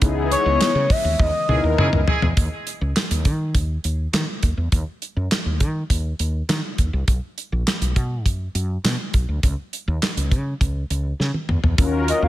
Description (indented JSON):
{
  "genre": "early-eighties boogie funk",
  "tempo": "102 BPM",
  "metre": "4/4",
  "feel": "straight",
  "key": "unclear",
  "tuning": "A4 = 440 Hz",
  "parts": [
    { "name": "mellow synth brass", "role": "accompaniment", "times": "0.0-2.0, 11.8-12.3 s", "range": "Cb4 to Bb4", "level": "-24 LUFS", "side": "left 4 dB", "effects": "chorus" },
    { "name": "lush unison pad", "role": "sustained chords", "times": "0.0-2.4, 11.8-12.3 s", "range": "Db3 to Eb5", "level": "-34 LUFS", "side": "equal", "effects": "chorus" },
    { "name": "woody fretless electric bass", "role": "bass", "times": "0.0-12.3 s", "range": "Bb1 to Eb3", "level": "-22 LUFS", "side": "equal", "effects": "none" },
    { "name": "damped 70s drum kit", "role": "drums", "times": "0.0-12.2 s", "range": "handclaps, hi-hat, kick drum, snare drum, toms", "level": "-21 LUFS", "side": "equal", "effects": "gated reverb" },
    { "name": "expressive synth lead", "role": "melody", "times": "0.3-2.1, 12.1-12.3 s", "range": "Db5 to F5", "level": "-21 LUFS", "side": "left 2 dB", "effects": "chorus" },
    { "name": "clear horn section", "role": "second line", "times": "1.5-2.3 s", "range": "Ab3 to Ab4", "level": "-28 LUFS", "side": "right 3 dB", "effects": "tape echo" }
  ],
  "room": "light reverb, small room ambience",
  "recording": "none",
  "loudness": "-19 LUFS",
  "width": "side -15 dB against mid",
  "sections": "0.0-2.4 A section; 2.4-11.8 B section",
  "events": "band accent 0.0-2.4; drum fill 1.2-2.4, 11.2-11.8",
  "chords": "0.0 Dbm9; 2.4 N.C.; 7.1 B5; 9.4 N.C."
}